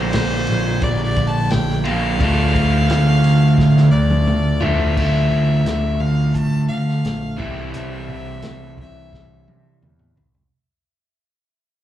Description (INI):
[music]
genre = classic rock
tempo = 87 BPM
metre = 4/4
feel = straight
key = D minor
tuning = A4 = 440 Hz
[part]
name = clear fiddle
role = melody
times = 0.0-9.4 s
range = C5 to A5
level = -25 LUFS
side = left 2 dB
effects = none
[part]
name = crunchy overdriven guitar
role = riff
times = 0.0-10.2 s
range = Bb2 to F4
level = -20 LUFS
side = equal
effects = none
[part]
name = overdriven picked electric bass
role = bass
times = 0.0-10.5 s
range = Bb1 to D3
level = -18 LUFS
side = right 1 dB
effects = none
[part]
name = vintage drum kit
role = drums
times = 0.1-10.5 s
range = crash cymbal, hi-hat, kick drum, ride cymbal, snare drum, toms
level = -24 LUFS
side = equal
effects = none
[sound]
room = little or no reverb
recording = live gig heard through the venue's PA, club reverb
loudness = -15 LUFS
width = side -12 dB against mid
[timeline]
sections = 0.0-5.0 A section; 5.0-10.5 B section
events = drum fill 3.6-5.0, 9.1-10.5; fade-out 5.0-10.5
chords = 0.0 Bb; 2.2 Dm; 5.0 Dmadd9; 7.4 C